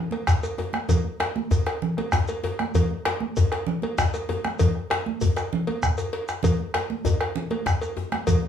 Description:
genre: west african traditional, West African drum ensemble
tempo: 130 BPM (dotted quarters)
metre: 12/8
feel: straight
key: none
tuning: none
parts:
  - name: bombo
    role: percussion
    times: 0.1-8.4 s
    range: none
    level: -24 LUFS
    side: equal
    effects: none
  - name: congas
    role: percussion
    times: 0.1-8.5 s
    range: none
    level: -29 LUFS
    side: right 4 dB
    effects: none
  - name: cowbell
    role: percussion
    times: 0.1-8.4 s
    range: none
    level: -31 LUFS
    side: equal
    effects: none
  - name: djembe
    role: percussion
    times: 0.3-8.4 s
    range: none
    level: -28 LUFS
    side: left 7 dB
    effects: none
  - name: shekere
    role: percussion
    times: 0.3-8.4 s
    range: none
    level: -35 LUFS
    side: right 1 dB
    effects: none
room: wet studio reverb, RT60 0.5 s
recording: studio ambience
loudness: -22 LUFS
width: side -8 dB against mid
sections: 0.0-8.5 A section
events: drum fill 5.8-6.4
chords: none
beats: 0.43 | 0.89 1.36 1.82 2.29 | 2.75 3.21 3.67 4.13 | 4.60 5.06 5.52 5.98 | 6.44 6.90 7.36 7.81 | 8.27

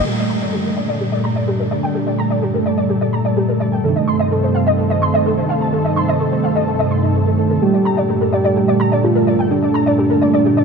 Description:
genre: techno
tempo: 127 BPM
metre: 4/4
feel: straight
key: G minor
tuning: A4 = 436 Hz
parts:
  - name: analog synth brass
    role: stabs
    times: 0.0-10.6 s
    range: G2 to A3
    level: -18 LUFS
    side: right 2 dB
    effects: chorus, dub echo
  - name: lush unison pad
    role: sustained chords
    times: 0.1-10.6 s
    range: G2 to A4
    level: -22 LUFS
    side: equal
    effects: chorus
  - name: warbly dusty pluck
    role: arpeggios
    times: 0.1-10.6 s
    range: Eb4 to C6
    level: -20 LUFS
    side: equal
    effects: ensemble chorus, dub echo
  - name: soft octave-layered synth lead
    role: melody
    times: 7.6-10.6 s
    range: D4 to G4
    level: -17 LUFS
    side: left 1 dB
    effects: chorus, dub echo
room: moderate huge ambient reverb, RT60 7.3 s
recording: none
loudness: -14 LUFS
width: side -5 dB against mid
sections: 0.1-10.6 A section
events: filter sweep on analog polysynth 0.1-10.6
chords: 0.1 Gmadd9; 3.8 Adim/G; 7.6 Gmadd9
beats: | 0.06 0.53 1.00 1.48 | 1.95 2.42 2.89 3.37 | 3.84 4.31 4.78 5.26 | 5.73 6.20 6.67 7.14 | 7.62 8.09 8.56 9.04 | 9.51 9.98 10.45

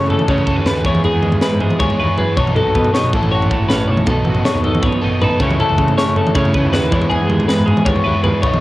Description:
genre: math rock and midwest emo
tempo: 158 BPM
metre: 4/4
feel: straight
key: A lydian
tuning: A4 = 441 Hz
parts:
  - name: twelve-string electric guitar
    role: accompaniment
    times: 0.0-8.6 s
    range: A2 to C#5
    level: -21 LUFS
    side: right 2 dB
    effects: cassette tape
  - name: twelve-string electric guitar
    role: arpeggios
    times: 0.0-8.6 s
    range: G#4 to C#5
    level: -20 LUFS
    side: left 2 dB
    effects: cassette tape
  - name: overdriven electric guitar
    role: riff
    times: 0.0-8.6 s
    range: A2 to A4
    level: -21 LUFS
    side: right 1 dB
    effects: cassette tape
  - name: growling picked electric bass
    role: bass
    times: 0.0-8.6 s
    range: G#1 to C#3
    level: -20 LUFS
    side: equal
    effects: overdrive
  - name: crisp fusion drum kit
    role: drums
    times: 0.1-8.6 s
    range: kick drum, snare drum, toms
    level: -18 LUFS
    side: equal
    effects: none
room: light reverb, studio reverb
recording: home recording on cassette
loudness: -13 LUFS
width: side -17 dB against mid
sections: 0.0-8.6 A section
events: none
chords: 0.0 A6/C#; 0.9 Emaj7; 2.4 B7; 3.1 A6; 4.1 B7; 5.4 A6/C#; 6.9 Emaj7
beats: 0.29 0.67 | 1.05 1.43 1.81 2.19 | 2.56 2.94 3.32 3.70 | 4.08 4.46 4.84 5.22 | 5.60 5.98 6.36 6.74 | 7.11 7.49 7.87 8.25

